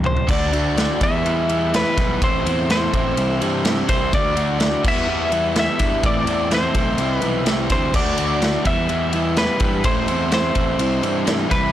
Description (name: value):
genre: indie rock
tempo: 126 BPM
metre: 4/4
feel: straight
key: E minor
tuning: A4 = 440 Hz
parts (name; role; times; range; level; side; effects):
- overdriven electric guitar; riff; 0.0-11.7 s; A2 to F#4; -22 LUFS; equal; none
- fuzz picked electric bass; bass; 0.0-11.7 s; A1 to G2; -25 LUFS; equal; overdrive
- big rock drum kit; drums; 0.0-11.6 s; crash cymbal, kick drum, ride cymbal, snare drum, toms; -22 LUFS; equal; none
- twelve-string electric guitar; melody; 0.1-11.7 s; B4 to E5; -22 LUFS; equal; slapback echo, plate reverb
room: light reverb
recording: blown-out, overdriven recording, overdrive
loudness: -17 LUFS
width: side -12 dB against mid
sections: 0.3-11.7 A section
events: drum fill 0.0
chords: 0.3 D; 1.0 Em; 2.2 Am; 3.2 C; 4.1 D; 4.8 Em; 6.0 Am; 7.0 C; 7.9 D; 8.7 Em; 9.8 Am; 10.8 C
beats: | 0.29 0.77 1.25 1.73 | 2.21 2.69 3.17 3.65 | 4.13 4.61 5.08 5.56 | 6.04 6.51 6.99 7.46 | 7.94 8.42 8.89 9.37 | 9.85 10.32 10.80 11.28